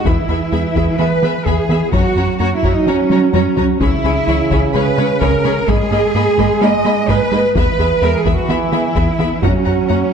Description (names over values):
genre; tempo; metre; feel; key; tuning
cinematic, hybrid orchestral and electronic film score; 128 BPM; 4/4; straight; unclear; A4 = 440 Hz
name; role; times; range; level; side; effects
mellow trombone section; sustained chords; 0.0-10.1 s; C#3 to G#3; -19 LUFS; right 4 dB; none
rubbery square bass; riff; 0.0-10.0 s; C#2 to G#3; -19 LUFS; right 1 dB; none
rich symphonic cello section; bass; 0.0-10.1 s; C#4 to D#5; -18 LUFS; right 1 dB; none
warm symphonic violin section; second line; 0.1-10.0 s; C#5 to B5; -25 LUFS; left 5 dB; none
rich symphonic viola section; accompaniment; 0.1-10.0 s; A#3 to G#4; -23 LUFS; equal; none
resonant blip pluck; arpeggios; 0.1-10.0 s; C#3 to D#4; -24 LUFS; right 1 dB; chorus, phaser, digital delay
taiko ensemble; drums; 0.1-9.9 s; none; -22 LUFS; left 2 dB; none
room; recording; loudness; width
wet scoring stage reverb, RT60 1.4 s; dark, warm production; -12 LUFS; side -7 dB against mid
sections
0.0-10.1 A section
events
drum fill 3.1-3.8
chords
0.1 E; 1.9 F#; 3.8 C#m7; 5.7 G#madd9; 7.6 E; 9.4 F#